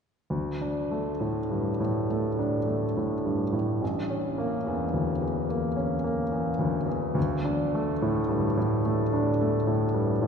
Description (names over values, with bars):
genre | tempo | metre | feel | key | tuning
classical | 65-75 BPM | 4/4 | rubato | unclear | A4 = 439 Hz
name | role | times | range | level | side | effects
clear baby grand piano | accompaniment | 0.3-10.3 s | A1 to D4 | -25 LUFS | equal | none
room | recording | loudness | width
wet cathedral reverb, RT60 6.2 s | recorded in a church or concert hall, nothing above 10.3 kHz | -25 LUFS | side -6 dB against mid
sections
0.3-10.3 A section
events
none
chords
0.3 D5; 3.8 A; 7.2 D5